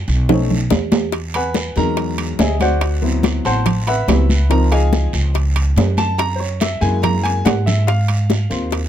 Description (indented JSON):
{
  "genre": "Afro-Cuban jazz",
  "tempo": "142 BPM",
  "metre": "4/4",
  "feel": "straight",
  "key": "unclear",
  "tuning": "A4 = 440 Hz",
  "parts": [
    { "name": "upright bass", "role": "bass", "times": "0.0-8.9 s", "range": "A1 to Ab2", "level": "-18 LUFS", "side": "equal", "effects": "none" },
    { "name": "congas", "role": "percussion", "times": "0.1-8.9 s", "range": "none", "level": "-22 LUFS", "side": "left 1 dB", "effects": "none" },
    { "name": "guiro", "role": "percussion", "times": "0.1-8.9 s", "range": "none", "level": "-31 LUFS", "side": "right 4 dB", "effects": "none" },
    { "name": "warm upright piano", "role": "accompaniment", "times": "0.3-8.8 s", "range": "F3 to C6", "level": "-20 LUFS", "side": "left 2 dB", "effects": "none" },
    { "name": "bongos", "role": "percussion", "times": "0.3-8.9 s", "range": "none", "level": "-24 LUFS", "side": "left 8 dB", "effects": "none" },
    { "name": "timbales", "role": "percussion", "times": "0.3-8.9 s", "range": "none", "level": "-22 LUFS", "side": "right 6 dB", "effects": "none" }
  ],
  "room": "light reverb",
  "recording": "close, detailed microphones",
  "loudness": "-14 LUFS",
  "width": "side -10 dB against mid",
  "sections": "0.0-1.1 A section; 1.1-8.9 A section",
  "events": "upright piano solo 0.0-8.9; drum fill 0.3-1.1, 7.5-7.9",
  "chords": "0.3 B7; 1.1 Emaj9; 2.8 D13; 4.5 Dbmaj9; 6.2 Gb9; 7.9 Ab69"
}